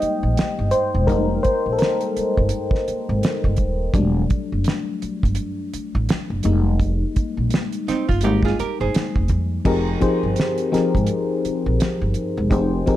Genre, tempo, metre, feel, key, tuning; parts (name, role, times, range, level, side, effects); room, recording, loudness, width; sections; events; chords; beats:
R&B, neo-soul; 84 BPM; 4/4; swing 59% on 16ths; F minor; A4 = 439 Hz
mellow FM electric piano; accompaniment; 0.0-13.0 s; F3 to G5; -22 LUFS; left 2 dB; chorus
upright bass; bass; 0.0-12.8 s; Eb1 to F2; -22 LUFS; right 1 dB
damped 70s drum kit; drums; 0.0-13.0 s; crash cymbal, hi-hat, kick drum, snare drum; -22 LUFS; right 1 dB
archtop guitar, miked and amplified; second line; 7.9-9.6 s; C4 to C5; -24 LUFS; right 7 dB
light reverb; dark, warm production; -18 LUFS; side -13 dB against mid
0.0-9.7 A section; 9.7-13.0 A section
FM electric piano solo 0.0-9.7
0.0 Fm11 (rootless); 3.9 Em11 (rootless); 6.4 Fm11
0.36 | 1.08 1.79 2.51 3.22 | 3.94 4.65 5.37 6.08 | 6.79 7.51 8.22 8.94 | 9.65 10.37 11.08 11.79 | 12.51